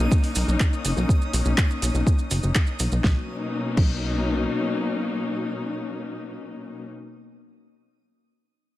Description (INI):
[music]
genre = progressive house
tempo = 123 BPM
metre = 4/4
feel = straight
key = B major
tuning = A4 = 439 Hz
[part]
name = warm symphonic string section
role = sustained chords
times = 0.0-6.9 s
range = B2 to D#4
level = -28 LUFS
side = left 2 dB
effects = sidechain pumping, low-pass filter
[part]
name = plucky analog bass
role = bass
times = 0.0-4.5 s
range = F#1 to B1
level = -24 LUFS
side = equal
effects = sidechain pumping
[part]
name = backwards swelling texture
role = texture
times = 0.0-3.1 s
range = D#6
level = -40 LUFS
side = equal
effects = built-in reverb, sidechain pumping
[part]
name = electronic kick drum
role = drums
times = 0.1-3.9 s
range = none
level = -20 LUFS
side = equal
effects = none
[part]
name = maracas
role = percussion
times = 0.1-3.0 s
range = none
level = -34 LUFS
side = right 5 dB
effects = none
[part]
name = deep house drum kit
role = drums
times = 0.2-3.9 s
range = crash cymbal, handclaps, hi-hat, snare drum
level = -30 LUFS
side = equal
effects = sidechain pumping on hats, sidechain pumping on cymbals
[sound]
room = light reverb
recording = none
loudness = -21 LUFS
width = side -16 dB against mid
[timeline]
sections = 0.0-3.0 A section; 3.0-6.9 B section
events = filter sweep on string section 0.0-3.0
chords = 0.0 Bmaj7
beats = 0.12 0.60 | 1.09 1.58 2.07 2.55 | 3.04 3.53 4.02 4.50 | 4.99 5.48 5.97 6.46